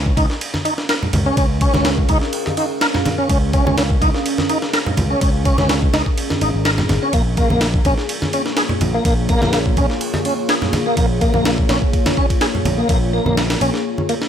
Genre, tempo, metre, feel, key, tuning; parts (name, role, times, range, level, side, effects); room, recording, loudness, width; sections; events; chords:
breakbeat, breaks; 125 BPM; 4/4; straight; Bb minor pentatonic; A4 = 440 Hz
deep dark ambient pad; sustained chords; 0.7-14.3 s; Bb3 to F5; -24 LUFS; equal; chorus, built-in reverb, vintage 12-bit sampler grit, sidechain pumping
overdriven picked electric bass; bass; 0.0-13.7 s; Ab1 to Db2; -20 LUFS; equal
breakbeat sampler-style drum kit; drums; 0.1-14.3 s; kick drum, ride cymbal, snare drum; -19 LUFS; equal; studio reverb
tonewheel organ; riff; 0.2-14.1 s; Bb3 to Bb4; -21 LUFS; equal; overdrive, chorus vibrato, slow rotary speaker, vintage 12-bit sampler grit, tape echo
congas; percussion; 0.5-14.1 s; -22 LUFS; right 1 dB
digital ambience; -15 LUFS; side -9 dB against mid
0.0-14.3 A section
break 13.9-14.3
0.0 Db6; 7.1 Bbm7